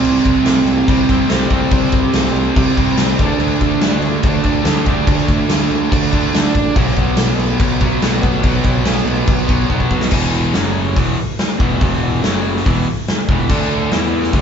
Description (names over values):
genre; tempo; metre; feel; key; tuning
hard rock; 143 BPM; 4/4; straight; E minor; A4 = 440 Hz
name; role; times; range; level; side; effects
distorted electric guitar; riff; 0.0-14.4 s; E2 to E4; -21 LUFS; equal; overdrive
overdriven semi-hollow guitar; riff; 0.0-14.4 s; E2 to E4; -19 LUFS; right 2 dB; none
overdriven picked electric bass; bass; 0.0-14.4 s; E1 to E2; -21 LUFS; equal; none
huge arena drum kit; drums; 0.0-14.4 s; crash cymbal, hi-hat, kick drum, snare drum; -16 LUFS; equal; none
room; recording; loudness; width
moderate large studio reverb, RT60 1.1 s; band playing live in one room, nothing above 7.6 kHz; -13 LUFS; side -7 dB against mid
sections
0.0-10.1 A section; 10.1-14.4 B section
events
drum fill 9.7-10.1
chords
0.0 C5; 3.2 D5; 6.8 B5; 10.1 E5; 10.5 F#5; 11.0 E5; 12.2 F#5; 12.6 E5; 13.5 D5; 13.9 E5